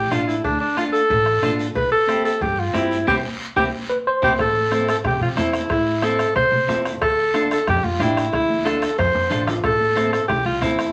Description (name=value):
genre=latin, cumbia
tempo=183 BPM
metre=4/4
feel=straight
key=D minor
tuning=A4 = 440 Hz
part: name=warm alto saxophone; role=melody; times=0.0-10.9 s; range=D4 to C5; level=-22 LUFS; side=equal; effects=none
part: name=upright bass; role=bass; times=0.0-10.9 s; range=A1 to C3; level=-30 LUFS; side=equal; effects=none
part: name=clean electric guitar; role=accompaniment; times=0.1-10.8 s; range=C4 to A4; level=-28 LUFS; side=equal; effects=none
part: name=bombo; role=percussion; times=0.1-10.9 s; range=none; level=-32 LUFS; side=equal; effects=none
part: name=congas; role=percussion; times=0.1-10.8 s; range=none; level=-34 LUFS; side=equal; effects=none
part: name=guiro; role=percussion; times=0.1-10.9 s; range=none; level=-39 LUFS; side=equal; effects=none
part: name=cowbell and timbales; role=percussion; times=0.4-10.8 s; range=none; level=-36 LUFS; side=equal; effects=none
part: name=tine electric piano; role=second line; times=3.9-4.4 s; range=B4 to C5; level=-24 LUFS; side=equal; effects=overdrive
room=wet club reverb, RT60 0.7 s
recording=vinyl crackle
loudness=-20 LUFS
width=mono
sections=0.0-4.4 A section; 4.4-10.9 B section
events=band accent 3.1-4.4; drum fill 3.9-4.4, 9.0-9.6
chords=0.0 Dm; 1.8 C; 4.4 Am; 7.0 Dmadd9; 9.6 Am